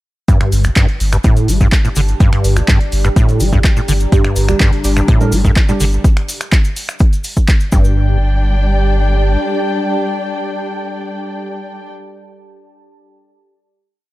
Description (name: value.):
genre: acid house.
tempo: 125 BPM.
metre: 4/4.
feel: straight.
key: G minor.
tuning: A4 = 440 Hz.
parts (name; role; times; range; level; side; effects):
acid bass, saw; riff; 0.3-8.2 s; G1 to G3; -16 LUFS; equal; tube saturation, ensemble chorus, tape echo.
electronic kick drum; drums; 0.3-7.8 s; none; -11 LUFS; equal; overdrive.
punchy analog drum machine; drums; 0.3-7.7 s; finger snaps, handclaps, hi-hat; -22 LUFS; equal; overdrive.
cabasa; percussion; 0.3-7.9 s; none; -29 LUFS; left 2 dB; none.
deep dark ambient pad; texture; 1.5-12.3 s; G4 to Bb5; -25 LUFS; equal; chorus, built-in reverb, sidechain pumping.
warm sub bass; bass; 0.5-9.4 s; G1; -14 LUFS; equal; sidechain pumping.
dark studio string section; sustained chords; 4.1-11.9 s; D3 to G5; -22 LUFS; left 2 dB; sidechain pumping.
deep mellow chord stab; stabs; 4.1-11.9 s; G3 to Bb4; -22 LUFS; right 2 dB; chorus, phaser, cassette tape, tape echo.
room: digital ambience.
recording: none.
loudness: -11 LUFS.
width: side -17 dB against mid.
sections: 0.3-8.0 groove; 8.0-11.8 final note.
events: fade-in on ambient pad 0.3-6.0.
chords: 0.3 G5.